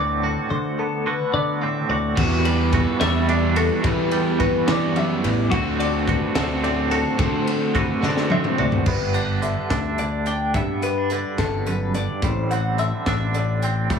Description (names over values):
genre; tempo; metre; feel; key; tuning
math rock and midwest emo; 72 BPM (dotted quarters); 6/8; straight; G major; A4 = 440 Hz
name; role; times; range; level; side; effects
twangy electric guitar; accompaniment; 0.0-14.0 s; D2 to F#4; -26 LUFS; right 7 dB; tremolo, dub echo
twelve-string electric guitar; arpeggios; 0.0-14.0 s; F#4 to G5; -26 LUFS; left 5 dB; phaser, dub echo
overdriven fingered electric bass; bass; 0.0-14.0 s; G1 to E3; -24 LUFS; left 1 dB; none
crunchy overdriven guitar; riff; 2.2-8.9 s; D3 to F#4; -24 LUFS; right 1 dB; none
crisp fusion drum kit; drums; 2.2-14.0 s; crash cymbal, hi-hat, kick drum, ride cymbal, snare drum, toms; -26 LUFS; equal; dub echo
room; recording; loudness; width
light reverb, small room ambience; echo-heavy mix, studio ambience; -19 LUFS; side -6 dB against mid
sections
0.0-8.9 A section; 8.9-14.0 B section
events
drum fill 8.0-8.9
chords
0.0 D13; 2.2 Em9; 5.5 D13; 8.9 G6; 12.2 D7sus4/A